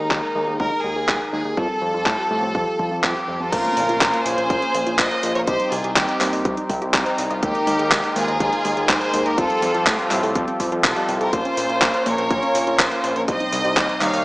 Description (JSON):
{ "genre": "italo disco", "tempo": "123 BPM", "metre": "4/4", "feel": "straight", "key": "Bb dorian", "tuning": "A4 = 436 Hz", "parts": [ { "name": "clear studio violin section", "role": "melody", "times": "0.0-14.2 s", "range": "C4 to F5", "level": "-22 LUFS", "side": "equal", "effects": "digital delay" }, { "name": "warm analog pad", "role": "sustained chords", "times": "0.0-14.2 s", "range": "C3 to C6", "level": "-26 LUFS", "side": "equal", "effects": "chorus" }, { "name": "wide unison pluck", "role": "arpeggios", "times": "0.0-14.2 s", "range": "G3 to Eb5", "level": "-32 LUFS", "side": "right 1 dB", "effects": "none" }, { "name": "bell-like tine electric piano", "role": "stabs", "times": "0.0-14.2 s", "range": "G3 to Eb5", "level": "-30 LUFS", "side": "left 1 dB", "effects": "medium stereo tremolo" }, { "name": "fat analog bass", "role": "bass", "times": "0.0-14.2 s", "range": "Bb1 to A2", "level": "-27 LUFS", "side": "equal", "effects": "none" }, { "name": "electronic kick drum", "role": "drums", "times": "0.1-13.9 s", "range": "none", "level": "-27 LUFS", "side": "equal", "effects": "none" }, { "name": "gated 80s digital drum machine", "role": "drums", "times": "0.1-14.2 s", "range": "crash cymbal, handclaps, hi-hat", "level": "-22 LUFS", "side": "equal", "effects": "gated reverb, overdrive, low-pass filter on snare, low-pass filter on hats, low-pass filter on cymbals, low-pass filter on room" }, { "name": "impact", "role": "sound effects", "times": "3.6-5.5 s", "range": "none", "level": "-35 LUFS", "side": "equal", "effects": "none" } ], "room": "light reverb", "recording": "small speaker sound", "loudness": "-18 LUFS", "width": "side -21 dB against mid", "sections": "0.0-3.5 A section; 3.5-14.2 B section", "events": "filter sweep on analog synth pad 0.0-3.5; impact 3.5-5.5", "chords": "0.0 Ebsus4; 1.6 Fadd9; 3.5 Bbmadd9; 5.5 Cm; 7.4 Ebsus4; 9.4 Fadd9; 11.3 Bbmadd9; 13.3 Cm" }